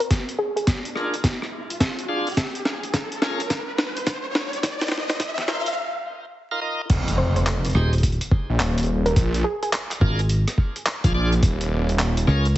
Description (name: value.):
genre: glitch hop.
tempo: 106 BPM.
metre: 4/4.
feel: swing 64% on 16ths.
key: F minor.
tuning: A4 = 440 Hz.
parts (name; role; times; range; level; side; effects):
woody wave-folded pluck; melody; 0.0-0.6, 7.2-9.7 s; Ab4 to C5; -27 LUFS; equal; analog chorus, tape echo.
boom bap sampler-style drum kit; drums; 0.0-12.6 s; crash cymbal, handclaps, hi-hat, rim click, snare drum; -26 LUFS; equal; none.
riser and impact; sound effects; 0.0-9.2 s; none; -30 LUFS; equal; none.
electronic kick drum; drums; 0.1-11.6 s; none; -20 LUFS; equal; none.
bright tonewheel organ; stabs; 1.0-12.5 s; Db4 to F5; -29 LUFS; equal; overdrive, slow rotary speaker, sidechain pumping, low-pass filter, tape echo.
phased detuned saw bass; bass; 6.9-12.3 s; Eb1 to Bb1; -21 LUFS; equal; phaser, tube saturation.
fingered electric bass; bass; 7.7-12.6 s; Eb1 to Db2; -19 LUFS; equal; tube saturation.
room: light reverb.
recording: heavily compressed radio sound, vinyl crackle, high-pass filter, nothing above 8.0 kHz.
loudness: -20 LUFS.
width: side -14 dB against mid.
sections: 0.0-6.9 A section; 6.9-12.6 B section.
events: build-up 0.0-6.9; drum fill 0.0-5.8; riser 0.0-5.8; filter sweep on tonewheel organ 0.0-6.9; filter sweep 0.0-6.9; break 5.8-6.9; drop 6.9-12.6; impact 6.9-9.2.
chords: 0.1 Bb7; 2.4 Db6; 4.6 Ebsus2; 6.9 Fm7; 9.2 Bb7; 11.4 Eb7sus4.